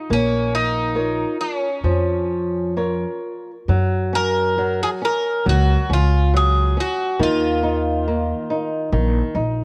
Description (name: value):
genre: fado-style ballad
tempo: 69 BPM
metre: 4/4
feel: rubato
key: unclear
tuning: A4 = 443 Hz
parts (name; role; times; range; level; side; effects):
- Greek bouzouki; melody; 0.0-9.6 s; Db4 to Bb4; -24 LUFS; equal; none
- flamenco guitar; accompaniment; 0.1-9.6 s; Eb3 to Db5; -26 LUFS; equal; cassette tape
- upright bass; bass; 0.1-9.6 s; Bb1 to Gb2; -22 LUFS; equal; none
room: light reverb, small room ambience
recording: home recording on cassette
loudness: -20 LUFS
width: mono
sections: 0.0-3.7 A section; 3.7-9.6 B section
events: none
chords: 0.1 Bbm; 3.7 Gb5; 7.2 Ebsus2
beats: | 0.10 0.96 1.84 2.76 | 3.68 4.58 5.46 6.33 | 7.20 8.06 8.92